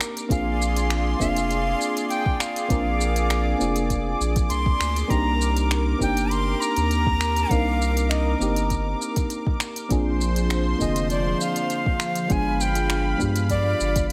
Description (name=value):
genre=sunset chillout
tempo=100 BPM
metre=4/4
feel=swing 53% on 16ths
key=C minor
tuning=A4 = 440 Hz
part: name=mellow FM electric piano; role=accompaniment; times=0.0-14.1 s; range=D3 to Bb4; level=-30 LUFS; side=equal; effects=chorus, diffuse ambient delay
part: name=lush unison pad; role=sustained chords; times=0.0-14.1 s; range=F3 to D6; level=-32 LUFS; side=equal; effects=chorus
part: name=smooth R&B drum kit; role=drums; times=0.0-14.1 s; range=finger snaps, hi-hat, shaker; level=-32 LUFS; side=equal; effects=overdrive, studio reverb
part: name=breathy bright jazz flute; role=melody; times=0.3-14.1 s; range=D5 to C6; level=-30 LUFS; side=equal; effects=diffuse ambient delay
part: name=round analog bass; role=bass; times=0.3-14.1 s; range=F1 to G2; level=-27 LUFS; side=equal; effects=none
part: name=electronic kick drum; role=drums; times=0.3-14.1 s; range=none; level=-27 LUFS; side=equal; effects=overdrive, studio reverb
room=moderate plate reverb, RT60 1.6 s, digital ambience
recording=dreamy mix soaked in reverb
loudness=-23 LUFS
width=mono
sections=0.0-14.1 A section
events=none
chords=0.3 Bb9; 5.1 Cm9; 9.9 Bb9; 12.3 G7b9